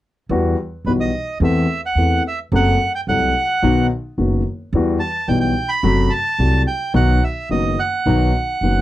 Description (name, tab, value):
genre	tango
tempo	108 BPM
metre	4/4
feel	rubato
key	E harmonic minor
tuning	A4 = 440 Hz
part	warm concert grand piano	accompaniment	0.3-8.8 s	F#1 to A4	-19 LUFS	left 2 dB	none
part	upright bass	bass	0.3-8.8 s	F#1 to E2	-20 LUFS	right 1 dB	none
part	bandoneon	melody	0.9-8.8 s	B4 to B5	-20 LUFS	right 2 dB	none
room	light reverb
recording	dry, close 1970s-style studio recording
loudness	-16 LUFS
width	side -14 dB against mid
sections	0.3-8.8 A section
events	none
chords	0.3 Emadd9; 1.4 Am/E; 2.5 F#dim; 3.6 B; 4.7 Emadd9; 5.8 F#dim; 6.9 B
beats	| 0.30 0.85 1.41 1.96 | 2.52 3.07 3.62 4.18 | 4.73 5.29 5.84 6.39 | 6.95 7.50 8.06 8.62